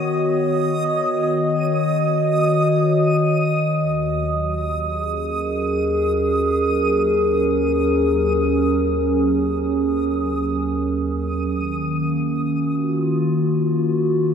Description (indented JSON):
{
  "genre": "ambient",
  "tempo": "free time",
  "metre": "none",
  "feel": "none",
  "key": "unclear",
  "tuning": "A4 = 441 Hz",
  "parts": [
    { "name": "warbly tape-like pad", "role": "sustained chords", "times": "0.0-14.3 s", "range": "Eb2 to D#5", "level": "-18 LUFS", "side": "equal", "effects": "chorus, built-in reverb" },
    { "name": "backwards swelling texture", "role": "texture", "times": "0.0-11.5 s", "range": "Eb6", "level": "-28 LUFS", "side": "right 1 dB", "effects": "built-in reverb" }
  ],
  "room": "wet echo chamber reverb, RT60 2.5 s",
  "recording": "none",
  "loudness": "-18 LUFS",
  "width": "side -7 dB against mid",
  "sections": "0.0-11.5 A section; 11.5-14.3 B section",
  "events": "none",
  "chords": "0.0 B/D#; 3.7 Gb/Eb; 11.5 Ebm",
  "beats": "free time"
}